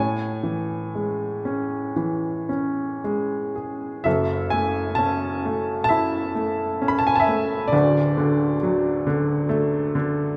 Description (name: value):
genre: classical, lyrical solo piano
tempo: 55-68 BPM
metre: 4/4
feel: rubato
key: A major, F# minor from 4.1 s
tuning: A4 = 438 Hz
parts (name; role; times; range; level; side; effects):
- clear upright piano; solo; 0.0-10.4 s; D1 to B5; -23 LUFS; equal; none
room: wet scoring stage reverb, RT60 2.0 s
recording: recorded in a church or concert hall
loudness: -23 LUFS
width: mono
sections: 0.0-4.1 A section; 4.1-10.4 B section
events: none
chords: 0.0 Amaj7; 4.1 F#m7; 7.7 D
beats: 0.94 1.97 3.04 | 4.06 4.99 5.90 6.82 | 7.73 8.62 9.50